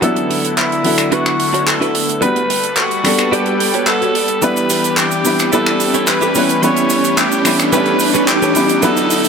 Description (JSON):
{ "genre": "nu-disco, nu disco", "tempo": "109 BPM", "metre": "4/4", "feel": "straight", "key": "unclear", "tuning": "A4 = 440 Hz", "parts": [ { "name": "raspy tenor saxophone", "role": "melody", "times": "0.0-9.3 s", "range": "E4 to C#5", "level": "-18 LUFS", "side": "left 1 dB", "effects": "low-pass filter, dub echo" }, { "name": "clear baby grand piano", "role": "accompaniment", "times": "0.0-9.3 s", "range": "F#3 to B4", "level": "-18 LUFS", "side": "equal", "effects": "low-pass filter" }, { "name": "lush unison pad", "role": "sustained chords", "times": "0.0-9.3 s", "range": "D3 to F#5", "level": "-21 LUFS", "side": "equal", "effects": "chorus" }, { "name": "direct-recorded clean electric guitar", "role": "riff", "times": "0.0-9.1 s", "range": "E3 to G5", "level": "-21 LUFS", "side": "right 2 dB", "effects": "ensemble chorus, vintage 12-bit sampler grit, low-pass filter" }, { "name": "tight funk drum kit", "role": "drums", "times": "0.0-9.3 s", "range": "cabasa, finger snaps, handclaps, hi-hat", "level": "-18 LUFS", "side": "right 1 dB", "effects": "high-pass filter on hats, high-pass filter on snare, high-pass filter on perc, high-pass filter on room" }, { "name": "riser", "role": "sound effects", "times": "0.7-9.3 s", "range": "none", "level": "-22 LUFS", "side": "equal", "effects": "none" } ], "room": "moderate lush hall reverb, RT60 2.2 s", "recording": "none", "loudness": "-12 LUFS", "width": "side -6 dB against mid", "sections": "0.0-9.3 A section", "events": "build-up 0.0-9.3; filter sweep on tenor saxophone 0.0-9.3; riser 0.7-9.3; clean electric guitar fill 3.3-4.4", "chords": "0.0 D69; 2.2 Gmaj9; 4.4 Em7; 6.4 A9/E" }